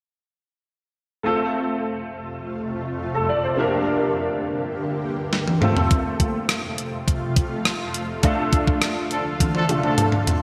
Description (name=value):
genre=1980s-style pop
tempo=103 BPM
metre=4/4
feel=straight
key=F major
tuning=A4 = 441 Hz
part: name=warm grand piano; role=accompaniment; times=1.2-10.4 s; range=A3 to D5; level=-26 LUFS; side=equal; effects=tube saturation, ensemble chorus
part: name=granular cloud pad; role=sustained chords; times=2.0-10.4 s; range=D2 to G4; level=-30 LUFS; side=equal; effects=built-in reverb, analog chorus
part: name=clean 12-bit digital drum machine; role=drums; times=5.3-10.4 s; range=hi-hat, kick drum, rim click, snare drum, toms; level=-24 LUFS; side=equal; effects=gated reverb
part: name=warm horn section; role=stabs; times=9.1-10.0 s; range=F3 to A4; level=-28 LUFS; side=equal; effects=digital delay
room=wet lush hall reverb, RT60 2.3 s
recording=bright 1980s-style digital production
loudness=-23 LUFS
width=mono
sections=1.2-10.4 A section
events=drum fill 5.3-5.9, 9.4-10.4; band accent 8.2-10.4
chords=1.2 F; 3.6 Gm; 5.6 F; 8.2 Dm